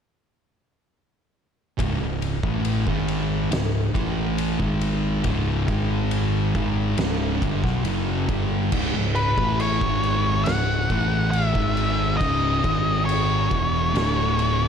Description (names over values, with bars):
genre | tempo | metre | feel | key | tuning
stoner and doom metal | 69 BPM | 4/4 | straight | unclear | A4 = 439 Hz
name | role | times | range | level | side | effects
thick fuzz guitar | riff | 1.8-14.7 s | C#2 to A3 | -26 LUFS | left 10 dB | distortion
thick fuzz guitar | riff | 1.8-14.7 s | C#2 to A3 | -26 LUFS | right 9 dB | distortion
picked electric bass | bass | 1.8-14.7 s | C#1 to B1 | -27 LUFS | equal | tube saturation
oversized low-tuned drum kit | drums | 1.8-14.6 s | crash cymbal, kick drum, ride cymbal, snare drum | -28 LUFS | equal | none
octave-fuzz lead guitar | melody | 9.2-14.7 s | B4 to F#5 | -24 LUFS | equal | distortion, analog delay
room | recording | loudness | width
light reverb, studio reverb | none | -20 LUFS | side -7 dB against mid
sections
1.8-8.7 A section; 8.7-14.7 B section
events
none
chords
1.8 C#m; 5.7 G#5; 6.6 C#5; 8.7 C#m; 12.6 G#5; 13.5 C#m; 13.9 D5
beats
| 1.79 2.65 3.52 4.39 | 5.26 6.12 6.99 7.86 | 8.73 9.60 10.47 11.34 | 12.21 13.08 13.95